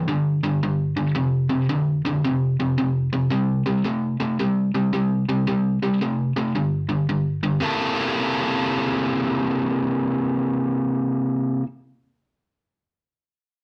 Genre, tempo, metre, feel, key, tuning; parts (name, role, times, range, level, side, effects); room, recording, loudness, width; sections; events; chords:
blues; 111 BPM; 4/4; swing 65% on 8ths; C mixolydian; A4 = 442 Hz
biting overdriven guitar; solo; 0.0-11.7 s; F2 to A4; -22 LUFS; equal
moderate studio reverb, RT60 0.7 s; -23 LUFS; mono
0.0-7.6 A section; 7.6-11.9 B section
0.0 G5; 1.2 F5; 3.3 C5; 6.5 G5; 7.6 C6